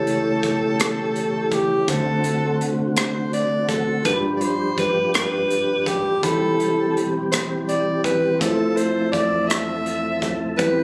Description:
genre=slow gospel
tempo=55 BPM (dotted quarters)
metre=6/8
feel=straight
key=unclear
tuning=A4 = 440 Hz
part: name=raspy alto saxophone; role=melody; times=0.0-10.8 s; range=G4 to E5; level=-25 LUFS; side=equal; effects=none
part: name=tine electric piano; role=accompaniment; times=0.0-10.8 s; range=G2 to B5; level=-27 LUFS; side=equal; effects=none
part: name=tonewheel organ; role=sustained chords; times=0.0-10.8 s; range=D3 to E5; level=-29 LUFS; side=equal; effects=slow rotary speaker, chorus vibrato
part: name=fingered electric bass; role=bass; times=0.0-10.8 s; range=E1 to D2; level=-39 LUFS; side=equal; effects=none
part: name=crisp fusion drum kit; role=drums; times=0.1-10.8 s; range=hi-hat, kick drum, rim click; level=-28 LUFS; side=equal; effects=none
room=light reverb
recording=recorded on a phone in the room, club reverb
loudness=-21 LUFS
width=mono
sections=0.0-10.8 A section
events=none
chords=0.0 A7; 1.9 D7; 4.1 G7; 6.2 Cmaj7; 8.4 Fmaj7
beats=0.80 | 1.88 2.97 | 4.05 5.14 | 6.23 7.32 | 8.40 9.50 | 10.59

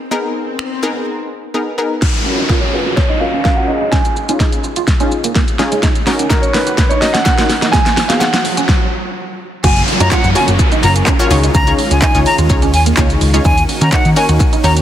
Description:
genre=dance-pop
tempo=126 BPM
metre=4/4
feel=straight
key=F# major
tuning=A4 = 440 Hz
part: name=swell, riser and downlifter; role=sound effects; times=0.0-13.4 s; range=none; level=-22 LUFS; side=equal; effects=none
part: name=analog pluck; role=accompaniment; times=0.1-14.8 s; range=B3 to C#5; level=-19 LUFS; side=left 2 dB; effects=chorus, sidechain pumping, low-pass filter
part: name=pop drum kit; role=drums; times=0.6-14.8 s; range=crash cymbal, finger snaps, handclaps, hi-hat, kick drum, shaker, snare drum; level=-14 LUFS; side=equal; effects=none
part: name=clean electric guitar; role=riff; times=2.0-14.8 s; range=G#3 to F#4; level=-22 LUFS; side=right 8 dB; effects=analog chorus, low-pass filter
part: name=warm concert grand piano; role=melody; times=2.5-8.9 s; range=A#4 to G#5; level=-18 LUFS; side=right 2 dB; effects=low-pass filter, digital delay
part: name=group handclap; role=percussion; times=6.3-14.5 s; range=none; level=-30 LUFS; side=left 7 dB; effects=none
part: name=breathy bright concert flute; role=melody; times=9.6-14.7 s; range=F#5 to A#5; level=-17 LUFS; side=left 1 dB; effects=sidechain pumping, digital delay
part: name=supersaw chords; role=sustained chords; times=9.6-14.8 s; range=C#3 to F#4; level=-23 LUFS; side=equal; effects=sidechain pumping
part: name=hollow-body short-scale picked electric bass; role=bass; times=9.6-14.8 s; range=F#1 to D#3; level=-14 LUFS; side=equal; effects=sidechain pumping
room=light reverb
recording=dense, heavily limited modern master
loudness=-11 LUFS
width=side -11 dB against mid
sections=0.0-2.0 A section; 2.0-9.6 B section; 9.6-14.8 C section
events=swell 0.0-2.0; build-up 2.0-9.6; drum fill 2.0-8.7; riser 2.0-9.6; filter sweep 2.0-9.6; stop 8.7-9.6; drop 9.6-14.8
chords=0.0 G#madd9; 2.0 F#maj7; 3.7 C#add9; 5.8 D#m7; 7.7 G#m7; 9.6 F#maj7; 11.3 C#add9; 13.4 D#m7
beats=| 0.12 0.59 1.07 1.54 | 2.02 2.50 2.97 3.45 | 3.93 4.40 4.88 5.35 | 5.83 6.31 6.78 7.26 | 7.74 8.21 8.69 9.16 | 9.64 10.12 10.59 11.07 | 11.54 12.02 12.50 12.97 | 13.45 13.93 14.40

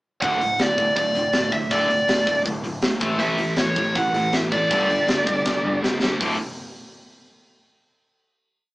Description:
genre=punk rock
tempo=160 BPM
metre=4/4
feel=straight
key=unclear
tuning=A4 = 438 Hz
part: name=biting lead guitar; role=melody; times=0.2-5.8 s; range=C#5 to F#5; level=-21 LUFS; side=right 1 dB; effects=overdrive
part: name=distorted electric guitar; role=riff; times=0.2-6.4 s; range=D2 to A3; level=-27 LUFS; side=equal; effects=distortion
part: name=overdriven semi-hollow guitar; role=riff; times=0.2-6.4 s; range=D2 to A3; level=-33 LUFS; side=right 1 dB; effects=none
part: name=overdriven picked electric bass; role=bass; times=0.2-6.4 s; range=D1 to C#2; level=-32 LUFS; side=equal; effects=none
part: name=tight metal drum kit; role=drums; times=0.2-6.3 s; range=hi-hat, kick drum, snare drum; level=-25 LUFS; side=equal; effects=none
part: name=distorted electric guitar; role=riff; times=3.2-6.4 s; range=D2 to A3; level=-27 LUFS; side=equal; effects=distortion
room=moderate studio reverb, RT60 0.5 s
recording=rough rehearsal-room recording, small speaker sound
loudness=-19 LUFS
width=side -19 dB against mid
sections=0.2-6.2 verse; 6.2-7.7 final chord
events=drum fill 5.5-6.2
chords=0.2 D5; 3.0 A; 4.7 G5; 6.2 D5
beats=| 0.21 0.59 0.96 1.33 | 1.71 2.08 2.46 2.83 | 3.21 3.58 3.96 4.33 | 4.71 5.08 5.46 5.83 | 6.21

